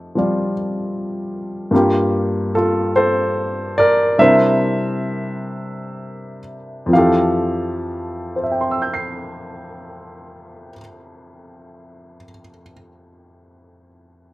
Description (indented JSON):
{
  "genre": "jazz ballad",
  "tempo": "41-53 BPM",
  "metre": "4/4",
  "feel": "swing 66% on 8ths",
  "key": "F major",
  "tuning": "A4 = 440 Hz",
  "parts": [
    { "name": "warm grand piano", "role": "solo", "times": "0.0-14.3 s", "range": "F2 to C7", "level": "-16 LUFS", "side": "equal", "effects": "slapback echo" }
  ],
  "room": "little or no reverb",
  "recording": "recorded outdoors, with no room sound",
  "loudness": "-16 LUFS",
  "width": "side -18 dB against mid",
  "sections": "0.0-1.7 A section; 1.7-6.9 B section; 6.9-12.7 C section",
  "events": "slowing down 0.0-6.9",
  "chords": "0.0 F9; 1.7 Gm9; 4.2 C9; 6.9 Fmaj9",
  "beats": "0.54 | 1.72 2.93 4.19 5.51 | 6.91 8.36 9.81 11.25"
}